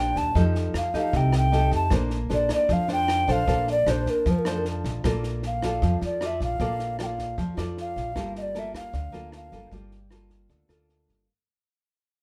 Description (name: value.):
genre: bossa nova.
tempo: 154 BPM.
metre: 4/4.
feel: straight.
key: Bb major.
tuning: A4 = 441 Hz.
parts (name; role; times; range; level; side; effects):
alto ocarina; melody; 0.0-9.7 s; A4 to A5; -29 LUFS; equal; none.
nylon-string guitar; accompaniment; 0.0-11.3 s; Bb2 to D5; -31 LUFS; equal; none.
upright bass; bass; 0.0-11.3 s; G1 to F2; -30 LUFS; equal; none.
compact cocktail drum kit; drums; 0.2-11.1 s; kick drum, rim click, snare drum; -35 LUFS; equal; none.
room: light reverb.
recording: none.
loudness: -25 LUFS.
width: mono.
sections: 0.0-5.0 A section; 5.0-11.3 B section.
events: fade-out 5.0-11.3; ocarina solo 5.0-11.3.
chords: 0.4 F9; 1.9 Bbmaj9; 5.0 Bbmaj7; 8.2 Gm9.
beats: | 0.36 0.75 1.14 1.53 | 1.92 2.31 2.70 3.09 | 3.48 3.87 4.26 4.65 | 5.04 5.43 5.82 6.21 | 6.60 6.99 7.38 7.77 | 8.16 8.55 8.94 9.33 | 9.72 10.11 10.50 10.89.